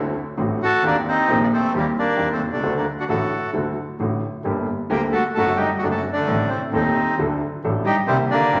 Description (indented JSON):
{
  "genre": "tango",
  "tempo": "133 BPM",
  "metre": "4/4",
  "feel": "rubato",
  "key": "unclear",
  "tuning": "A4 = 440 Hz",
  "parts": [
    { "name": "dark upright piano", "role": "accompaniment", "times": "0.0-8.6 s", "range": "Eb1 to A4", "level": "-25 LUFS", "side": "equal", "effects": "none" },
    { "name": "warm double bass", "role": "bass", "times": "0.0-8.6 s", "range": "F#1 to Eb2", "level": "-32 LUFS", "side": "equal", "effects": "none" },
    { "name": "bandoneon", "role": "melody", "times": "0.6-8.6 s", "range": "G3 to Bb4", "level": "-23 LUFS", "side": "equal", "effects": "none" },
    { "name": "warm cello", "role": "second line", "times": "4.9-8.6 s", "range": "C3 to Bb3", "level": "-30 LUFS", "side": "equal", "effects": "none" }
  ],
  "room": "wet large studio reverb, RT60 1.4 s",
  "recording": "none",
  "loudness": "-21 LUFS",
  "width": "mono",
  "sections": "0.0-8.6 A section",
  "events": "none",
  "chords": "0.0 D7; 0.8 Eb6; 1.7 Cm/Eb; 2.6 D; 4.5 Gmadd9; 5.4 D7/F#; 6.3 Adim; 7.2 D; 8.1 Cm7"
}